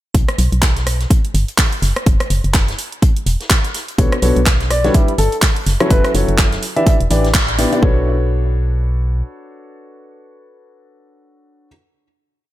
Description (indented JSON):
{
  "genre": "piano house",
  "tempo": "125 BPM",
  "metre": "4/4",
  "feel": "swing 58% on 16ths",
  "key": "B minor",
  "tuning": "A4 = 440 Hz",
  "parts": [
    { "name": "organ-like FM bass", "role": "bass", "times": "0.1-9.2 s", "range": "E1 to B1", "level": "-17 LUFS", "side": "equal", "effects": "sidechain pumping" },
    { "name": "electronic kick drum", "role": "drums", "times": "0.1-7.9 s", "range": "none", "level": "-14 LUFS", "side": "equal", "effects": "none" },
    { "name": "house drum kit", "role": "drums", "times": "0.1-7.8 s", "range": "handclaps, hi-hat, rim click", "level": "-20 LUFS", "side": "right 1 dB", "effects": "none" },
    { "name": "vintage drum kit", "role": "drums", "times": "0.2-7.8 s", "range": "hi-hat, snare drum", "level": "-31 LUFS", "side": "left 2 dB", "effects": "sidechain pumping on hats, high-pass filter on hats, high-pass filter on snare, high-pass filter on room" },
    { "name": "warm upright piano", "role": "riff", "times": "4.0-11.7 s", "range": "B2 to E5", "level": "-20 LUFS", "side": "left 1 dB", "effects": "sidechain pumping, tape echo" },
    { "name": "warm concert grand piano", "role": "melody", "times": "4.7-7.0 s", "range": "A4 to E5", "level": "-22 LUFS", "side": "equal", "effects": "tape echo" }
  ],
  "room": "studio ambience",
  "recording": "none",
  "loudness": "-13 LUFS",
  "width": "side -14 dB against mid",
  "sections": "0.1-7.8 groove; 7.8-11.7 final chord",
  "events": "band accent 7.3",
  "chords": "0.1 N.C.; 4.0 Bm9; 4.9 G6; 5.7 F#m7; 6.6 Em7; 7.8 Bm9"
}